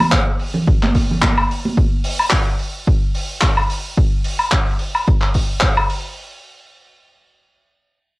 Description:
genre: nu-disco, nu disco.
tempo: 109 BPM.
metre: 4/4.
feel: swing 56% on 16ths.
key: none.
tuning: none.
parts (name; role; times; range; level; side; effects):
damped 70s drum kit; drums; 0.0-6.0 s; handclaps, hi-hat, woodblock; -20 LUFS; equal; cassette tape.
congas; percussion; 0.0-1.7 s; none; -21 LUFS; right 2 dB; none.
electronic kick drum; drums; 0.1-5.7 s; none; -17 LUFS; equal; cassette tape.
room: light reverb.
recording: home recording on cassette.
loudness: -15 LUFS.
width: side -22 dB against mid.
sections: 0.0-6.2 A section; 6.2-8.2 B section.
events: none.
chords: none.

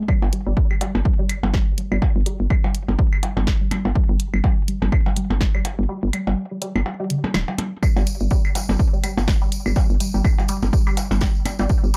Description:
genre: minimal techno.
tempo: 124 BPM.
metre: 4/4.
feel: swing 57% on 16ths.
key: unclear.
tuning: A4 = 440 Hz.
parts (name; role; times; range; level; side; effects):
resonant blip pluck; riff; 0.1-12.0 s; D3 to G3; -31 LUFS; equal; phaser, analog chorus, sidechain pumping, tape echo.
electronic kick drum; drums; 0.1-11.8 s; none; -22 LUFS; equal; none.
claves and percussion blips; percussion; 0.1-11.7 s; none; -31 LUFS; equal; none.
hollow knocking FM bass; bass; 0.2-11.9 s; D1 to A1; -24 LUFS; equal; sidechain pumping.
punchy analog drum machine; drums; 0.3-12.0 s; hi-hat, snare drum; -29 LUFS; equal; none.
tambourine; percussion; 7.8-12.0 s; none; -38 LUFS; equal; none.
room: light reverb.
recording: dark, warm production.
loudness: -21 LUFS.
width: mono.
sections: 0.0-12.0 A section.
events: filter sweep on synth pluck 0.0-12.0; break 5.9-7.8.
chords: 0.0 G5.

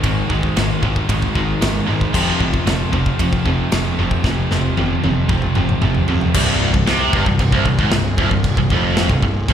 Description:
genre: heavy metal.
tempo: 114 BPM.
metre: 4/4.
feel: straight.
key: unclear.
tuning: A4 = 441 Hz.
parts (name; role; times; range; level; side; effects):
distorted electric guitar; riff; 0.0-9.5 s; C2 to Ab3; -22 LUFS; left 1 dB; distortion.
tight distorted guitar; riff; 0.0-9.5 s; C2 to F3; -20 LUFS; right 1 dB; distortion, slapback echo.
fuzz picked electric bass; bass; 0.0-9.5 s; C1 to Ab2; -20 LUFS; equal; overdrive.
modern studio drum kit; drums; 0.0-9.5 s; china cymbal, crash cymbal, kick drum, ride cymbal, snare drum, toms; -20 LUFS; equal; none.
room: light reverb.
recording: live gig heard through the venue's PA, recital hall reverb.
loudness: -15 LUFS.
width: side -9 dB against mid.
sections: 0.0-6.3 A section; 6.3-9.5 B section.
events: drum fill 4.2-6.3.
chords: 0.0 Ab5; 2.1 F5; 6.3 N.C..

